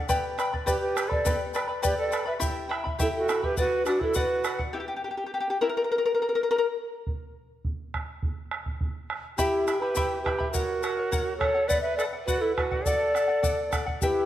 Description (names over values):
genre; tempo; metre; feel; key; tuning
andean folk, Andean ensemble; 104 BPM; 2/4; straight; B minor; A4 = 440 Hz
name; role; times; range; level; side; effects
charango; accompaniment; 0.0-6.7, 9.4-14.3 s; E4 to B5; -29 LUFS; left 3 dB; none
bombo; percussion; 0.1-4.7, 7.1-14.2 s; none; -31 LUFS; right 2 dB; none
tube shaker; percussion; 0.1-4.6, 9.4-14.2 s; none; -40 LUFS; left 8 dB; none
mellow hollow polished pan flute; melody; 0.7-4.6, 9.4-14.3 s; F#4 to E5; -27 LUFS; equal; none
bright reedy large quena; second line; 0.7-4.6, 9.4-14.3 s; D4 to B4; -33 LUFS; right 4 dB; none
room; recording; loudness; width
moderate scoring stage reverb, RT60 1.6 s; none; -25 LUFS; side -12 dB against mid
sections
0.0-4.7 A section; 4.7-9.4 B section; 9.4-14.3 C section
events
charango solo 4.7-9.4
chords
0.1 G; 2.4 Em; 3.6 Bm; 4.7 N.C.; 9.4 Em; 10.5 F#; 11.7 Bm; 12.9 D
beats
| 0.10 0.68 | 1.26 1.84 | 2.42 3.00 | 3.58 4.16 | 4.74 5.32 | 5.90 6.48 | 7.07 7.65 | 8.23 8.81 | 9.39 9.97 | 10.55 11.12 | 11.70 12.28 | 12.86 13.44 | 14.02